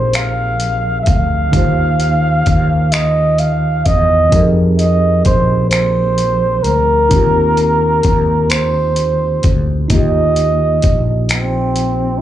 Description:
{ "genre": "slow six-eight R&B", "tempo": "43 BPM (dotted quarters)", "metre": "6/8", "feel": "straight", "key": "Eb major", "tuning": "A4 = 440 Hz", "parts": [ { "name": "breathy flugelhorn", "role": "melody", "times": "0.0-12.2 s", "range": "C4 to F5", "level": "-15 LUFS", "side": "right 2 dB", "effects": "slapback echo" }, { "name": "mellow tine electric piano", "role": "accompaniment", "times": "0.0-12.2 s", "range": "Eb3 to C5", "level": "-20 LUFS", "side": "equal", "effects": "medium stereo tremolo, slapback echo" }, { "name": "mellow fretless electric bass", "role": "bass", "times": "0.0-12.2 s", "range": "Bb1 to F2", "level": "-16 LUFS", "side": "equal", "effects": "none" }, { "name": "dusty soul sampler-style drum kit", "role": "drums", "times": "0.1-12.0 s", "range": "finger snaps, hi-hat, kick drum", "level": "-16 LUFS", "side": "left 1 dB", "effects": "overdrive" } ], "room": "little or no reverb", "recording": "live gig heard through the venue's PA, club reverb, nothing above 11.0 kHz", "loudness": "-11 LUFS", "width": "side -12 dB against mid", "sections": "0.0-12.2 A section", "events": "none", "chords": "0.0 Fm11; 1.5 Eb6; 4.3 Fm11; 7.1 Eb6; 9.9 Ebadd9" }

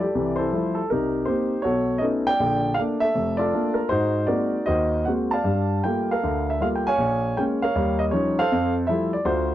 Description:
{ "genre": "solo jazz", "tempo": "159 BPM", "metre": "4/4", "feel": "swing 65% on 8ths, rubato", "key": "F major", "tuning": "A4 = 440 Hz", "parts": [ { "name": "warm grand piano", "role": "solo", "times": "0.0-9.5 s", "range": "F1 to A5", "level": "-20 LUFS", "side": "equal", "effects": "none" } ], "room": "light reverb", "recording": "dry, close 1970s-style studio recording", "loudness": "-20 LUFS", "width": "side -12 dB against mid", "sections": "0.0-9.5 A section", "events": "none", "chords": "0.0 Fmaj9; 0.9 Cm7; 1.6 B9; 2.4 Bbmaj7; 3.9 Ab9; 5.5 Gm9; 7.0 Bbm7; 7.8 Eb9; 8.5 Fmaj9" }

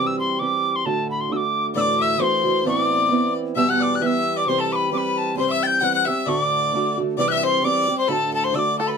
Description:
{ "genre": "celtic folk, Celtic polka", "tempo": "133 BPM", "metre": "2/4", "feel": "swing 55% on 8ths", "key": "D mixolydian", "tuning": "A4 = 440 Hz", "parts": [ { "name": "wooden whistle", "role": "melody", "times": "0.0-9.0 s", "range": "A5 to A6", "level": "-22 LUFS", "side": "equal", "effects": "none" }, { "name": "fingerpicked steel-string acoustic guitar", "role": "accompaniment", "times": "0.0-9.0 s", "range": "D2 to G4", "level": "-24 LUFS", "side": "right 4 dB", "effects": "none" }, { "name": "rich fiddle", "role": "second line", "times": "1.7-9.0 s", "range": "A4 to G5", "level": "-24 LUFS", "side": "left 7 dB", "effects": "none" }, { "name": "bluegrass banjo", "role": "second line", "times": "8.8-9.0 s", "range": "A4", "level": "-26 LUFS", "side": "right 1 dB", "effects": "none" } ], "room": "moderate studio ambience, RT60 0.5 s", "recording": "band playing live in one room", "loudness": "-18 LUFS", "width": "side -6 dB against mid", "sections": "0.0-1.8 A section; 1.8-9.0 A section", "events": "none", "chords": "0.0 C; 0.9 D; 1.8 Dadd9; 2.7 Amadd9; 3.6 Em/B; 4.5 C; 6.3 D; 7.2 C; 8.1 D" }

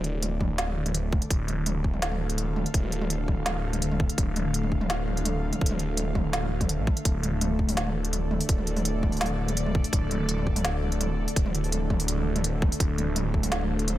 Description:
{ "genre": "half-time drum and bass", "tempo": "167 BPM", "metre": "4/4", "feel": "half-time", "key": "D minor", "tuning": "A4 = 439 Hz", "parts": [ { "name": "bowed-like drone", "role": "sustained chords", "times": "0.0-14.0 s", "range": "D3 to F5", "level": "-32 LUFS", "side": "equal", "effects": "built-in reverb, sidechain pumping" }, { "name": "phased detuned saw bass", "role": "bass", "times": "0.0-14.0 s", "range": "D1 to A1", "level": "-28 LUFS", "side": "equal", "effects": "phaser, tube saturation" }, { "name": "organic electronic drum kit", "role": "drums", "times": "0.0-14.0 s", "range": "hi-hat, snare drum, toms", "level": "-30 LUFS", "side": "right 1 dB", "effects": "overdrive" }, { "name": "electronic kick drum", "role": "drums", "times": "0.4-13.4 s", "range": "none", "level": "-26 LUFS", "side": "equal", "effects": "none" } ], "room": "little or no reverb", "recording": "none", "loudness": "-24 LUFS", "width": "side -14 dB against mid", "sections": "0.0-14.0 A section", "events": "none", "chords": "0.0 D5" }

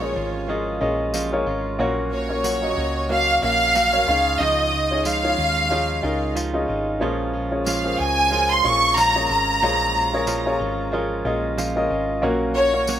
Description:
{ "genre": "piano-driven pop", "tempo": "92 BPM", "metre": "4/4", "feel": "swing 56% on 16ths", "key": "Bb minor", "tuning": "A4 = 440 Hz", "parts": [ { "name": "bright studio violin section", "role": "melody", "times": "0.0-13.0 s", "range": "Db5 to Db6", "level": "-19 LUFS", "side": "equal", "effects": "plate reverb" }, { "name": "warm upright piano", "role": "accompaniment", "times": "0.0-13.0 s", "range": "Bb2 to Eb5", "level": "-24 LUFS", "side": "left 2 dB", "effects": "plate reverb" }, { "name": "direct-recorded clean electric guitar", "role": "riff", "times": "0.0-13.0 s", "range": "Bb2 to Gb4", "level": "-29 LUFS", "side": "right 6 dB", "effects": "none" }, { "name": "hollow-body short-scale fingered electric bass", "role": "bass", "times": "0.0-13.0 s", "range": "Ab1 to Eb2", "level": "-29 LUFS", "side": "equal", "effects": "none" }, { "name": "tambourine", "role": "percussion", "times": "1.1-13.0 s", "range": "none", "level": "-30 LUFS", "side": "left 3 dB", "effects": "none" } ], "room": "moderate small room ambience, RT60 0.5 s", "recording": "rough home demo mix", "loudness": "-18 LUFS", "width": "side -10 dB against mid", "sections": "0.0-13.0 A section", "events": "none", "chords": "0.0 Bbm7; 1.8 Gb/Bb; 4.1 Dbadd9; 7.0 Bbm7; 12.2 Gb/Bb" }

